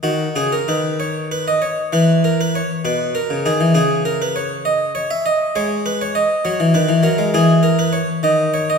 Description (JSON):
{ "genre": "classical, baroque-style suite movement for harpsichord", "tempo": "66 BPM (dotted quarters)", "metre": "6/8", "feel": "rubato", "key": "G# minor", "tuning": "A4 = 440 Hz", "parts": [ { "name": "harpsichord", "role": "solo", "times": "0.0-8.8 s", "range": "B2 to E5", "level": "-15 LUFS", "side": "equal", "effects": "none" } ], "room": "wet scoring stage reverb, RT60 1.5 s", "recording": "recorded in a church or concert hall", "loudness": "-15 LUFS", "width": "side -5 dB against mid", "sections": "0.0-8.8 A section", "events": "none", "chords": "0.0 C#9sus4; 1.9 E5; 3.8 N.C.; 5.6 G#5; 7.3 N.C.", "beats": "| 0.03 0.99 | 1.92 2.85 | 3.76 4.66 | 5.56 6.45 | 7.33 8.23" }